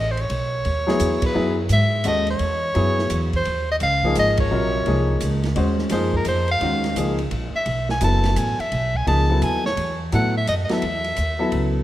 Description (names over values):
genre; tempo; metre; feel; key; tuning
modal jazz; 171 BPM; 3/4; swing 65% on 8ths; unclear; A4 = 440 Hz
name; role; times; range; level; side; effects
bright soprano saxophone; melody; 0.0-11.8 s; Bb4 to A5; -23 LUFS; equal; none
clear grand piano; accompaniment; 0.0-11.8 s; C3 to C5; -24 LUFS; left 2 dB; none
upright bass; bass; 0.0-11.8 s; F#1 to A2; -23 LUFS; equal; none
open jazz drum kit; drums; 0.2-11.6 s; hi-hat, kick drum, ride cymbal, snare drum; -31 LUFS; right 1 dB; none
room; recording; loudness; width
moderate concert hall reverb, RT60 2.0 s; none; -18 LUFS; side -14 dB against mid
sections
0.0-11.8 A section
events
band accent 1.2, 4.3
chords
0.0 B13sus4; 3.5 Eb13sus4; 7.7 B9sus4